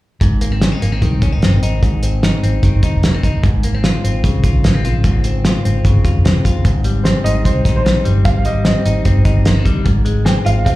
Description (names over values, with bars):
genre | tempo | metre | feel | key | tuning
jangly indie pop | 149 BPM | 4/4 | straight | Ab major | A4 = 440 Hz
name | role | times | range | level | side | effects
direct-recorded clean electric guitar | arpeggios | 0.2-10.8 s | Ab2 to F4 | -20 LUFS | left 3 dB | slapback echo
vintage muted fingered electric bass | bass | 0.2-10.8 s | F1 to C2 | -15 LUFS | equal | none
cloth-damped thuddy drum kit | drums | 0.2-10.8 s | hi-hat, kick drum, snare drum | -16 LUFS | equal | none
warm upright piano | melody | 7.0-10.8 s | C5 to G5 | -21 LUFS | right 3 dB | slapback echo
room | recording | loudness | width
studio ambience | live gig heard through the venue's PA, club reverb | -12 LUFS | side -17 dB against mid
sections
0.2-6.6 A section; 6.6-10.8 B section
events
none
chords
0.2 Ab; 3.4 Dbmaj7/Ab; 6.6 Abmaj7; 9.9 Dbmaj7 (rootless)